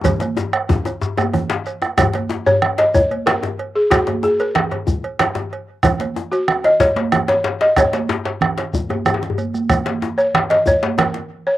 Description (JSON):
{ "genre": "west african traditional, West African drum ensemble", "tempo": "124 BPM (dotted quarters)", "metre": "12/8", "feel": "straight", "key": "unclear", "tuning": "A4 = 441 Hz", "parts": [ { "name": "bombo", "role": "percussion", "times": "0.0-11.1 s", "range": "none", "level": "-19 LUFS", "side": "right 2 dB", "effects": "slapback echo" }, { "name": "congas", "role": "percussion", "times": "0.0-11.3 s", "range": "none", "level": "-25 LUFS", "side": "right 4 dB", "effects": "none" }, { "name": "djembe", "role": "percussion", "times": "0.0-11.3 s", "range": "none", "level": "-26 LUFS", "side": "left 5 dB", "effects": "slapback echo" }, { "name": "djembe", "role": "percussion", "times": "0.0-11.1 s", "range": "none", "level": "-23 LUFS", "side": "left 4 dB", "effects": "slapback echo" }, { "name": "shekere", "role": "percussion", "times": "0.0-10.8 s", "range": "none", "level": "-31 LUFS", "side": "right 1 dB", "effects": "none" }, { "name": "cowbell", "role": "percussion", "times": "0.1-11.1 s", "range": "none", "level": "-26 LUFS", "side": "right 4 dB", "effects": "slapback echo" }, { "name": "balafon", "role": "melody", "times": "2.5-11.6 s", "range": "F#4 to D#5", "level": "-16 LUFS", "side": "equal", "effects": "slapback echo" } ], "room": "little or no reverb", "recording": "recorded outdoors, with no room sound", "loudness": "-15 LUFS", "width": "side -14 dB against mid", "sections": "0.0-2.0 A section; 2.0-11.6 B section", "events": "drum fill 0.0-2.0, 9.2-9.7", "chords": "none" }